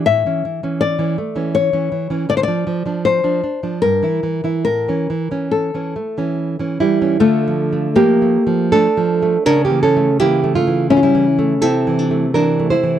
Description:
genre	romantic duo for nylon-string guitar and classical guitar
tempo	68-84 BPM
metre	3/4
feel	rubato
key	D minor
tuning	A4 = 440 Hz
part	nylon-string guitar	melody	0.0-13.0 s	A3 to E5	-18 LUFS	left 5 dB	none
part	nylon-string guitar	accompaniment	0.0-13.0 s	G2 to C5	-16 LUFS	right 3 dB	none
room	little or no reverb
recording	dry, close 1970s-style studio recording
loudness	-14 LUFS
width	side -10 dB against mid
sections	0.0-7.2 A section; 7.2-13.0 B section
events	none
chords	0.1 A; 2.3 Dm; 3.8 Edim/G; 4.7 A; 7.2 Dm; 9.5 A/C#; 11.6 Am/C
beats	| 0.07 0.81 1.56 | 2.30 3.05 3.82 | 4.66 5.52 6.38 | 7.20 7.96 8.71 | 9.45 10.18 10.90 | 11.62 12.34

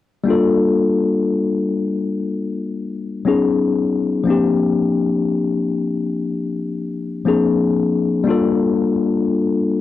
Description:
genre	R&B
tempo	60 BPM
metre	4/4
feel	swing 58% on 16ths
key	unclear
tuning	A4 = 445 Hz
part	tine electric piano	solo	0.2-9.8 s	F3 to A4	-16 LUFS	left 3 dB	medium stereo tremolo, cassette tape
room	moderate booth ambience, RT60 0.2 s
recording	home recording on cassette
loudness	-16 LUFS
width	side -13 dB against mid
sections	0.3-8.3 A section; 8.3-9.8 B section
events	none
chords	0.3 Gm9; 3.3 B69; 4.3 Bb69; 7.3 Bb9; 8.3 Gm9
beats	| 0.26 1.26 2.26 3.26 | 4.26 5.26 6.26 7.26 | 8.26 9.26

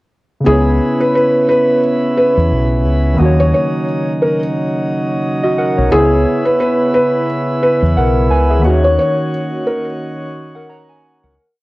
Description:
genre	lo-fi hip hop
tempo	88 BPM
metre	4/4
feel	swing 57% on 16ths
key	C# dorian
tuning	A4 = 441 Hz
part	warbly lo-fi synth keys	accompaniment	0.4-11.6 s	C#3 to A#5	-19 LUFS	equal	chorus, cassette tape
part	felt-muted upright piano	melody	0.5-9.8 s	G#4 to C#5	-14 LUFS	equal	cassette tape
part	chamber organ, principal chorus	sustained chords	0.5-11.3 s	C#3 to F#4	-18 LUFS	right 1 dB	cassette tape
part	deep dub fingered electric bass	bass	0.5-11.4 s	B1 to E2	-14 LUFS	equal	transformer saturation
room	light reverb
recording	home recording on cassette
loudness	-12 LUFS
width	side -20 dB against mid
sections	0.5-11.4 A section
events	fade-out 8.6-11.4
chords	0.5 C#m7; 3.2 D#m7; 5.9 C#m7; 8.6 D#m7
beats	| 0.46 1.14 1.82 2.51 | 3.19 3.87 4.55 5.23 | 5.92 6.60 7.28 7.96 | 8.64 9.32 10.01 10.69

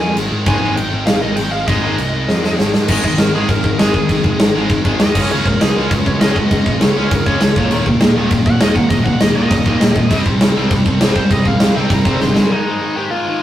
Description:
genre	punk rock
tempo	199 BPM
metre	4/4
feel	straight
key	unclear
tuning	A4 = 440 Hz
part	biting lead guitar	melody	0.0-13.4 s	C4 to C6	-22 LUFS	right 1 dB	overdrive
part	tight distorted guitar	riff	0.0-12.5 s	Eb2 to Db4	-24 LUFS	left 1 dB	distortion
part	fuzz picked electric bass	bass	0.0-12.4 s	Eb1 to Ab2	-22 LUFS	equal	overdrive
part	big rock drum kit	drums	0.2-12.4 s	crash cymbal, kick drum, snare drum	-15 LUFS	equal	none
part	cranked stack guitar	riff	0.5-13.4 s	Eb2 to Db4	-20 LUFS	left 1 dB	overdrive
part	tight distorted guitar	riff	0.5-12.5 s	Eb2 to Db4	-21 LUFS	right 2 dB	distortion
room	moderate booth ambience, RT60 0.2 s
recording	rough rehearsal-room recording, warm saturation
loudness	-12 LUFS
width	side -12 dB against mid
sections	0.0-2.9 A section; 2.9-12.5 B section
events	half time 0.0-2.9; drum fill 2.3-2.9, 12.2; lead electric guitar solo 2.9-12.5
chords	0.0 Ab5; 5.2 Db5; 7.6 Eb5; 10.1 C5; 12.5 Ab5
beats	0.17 | 0.47 0.77 1.07 1.38 | 1.68 1.98 2.28 2.58 | 2.89 3.19 3.49 3.79 | 4.09 4.40 4.70 5.00 | 5.30 5.61 5.91 6.21 | 6.51 6.81 7.11 7.41 | 7.71 8.01 8.31 8.61 | 8.91 9.21 9.51 9.81 | 10.11 10.41 10.71 11.01 | 11.31 11.61 11.91 12.21 | 12.51 12.81 13.11 13.41

